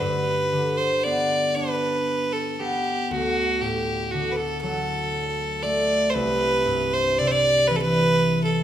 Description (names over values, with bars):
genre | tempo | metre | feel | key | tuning
celtic folk | 39 BPM (dotted quarters) | 6/8 | rubato | G major | A4 = 440 Hz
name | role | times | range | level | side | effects
clear fiddle | melody | 0.0-8.6 s | F#4 to D5 | -22 LUFS | right 1 dB | none
concert harp | accompaniment | 0.0-8.6 s | C2 to D5 | -26 LUFS | left 2 dB | none
room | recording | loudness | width
moderate recital hall reverb, RT60 1.6 s | minimal, uncompressed stereo recording | -20 LUFS | side -10 dB against mid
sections
0.0-8.6 A section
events
none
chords
0.0 G; 3.1 D; 6.2 C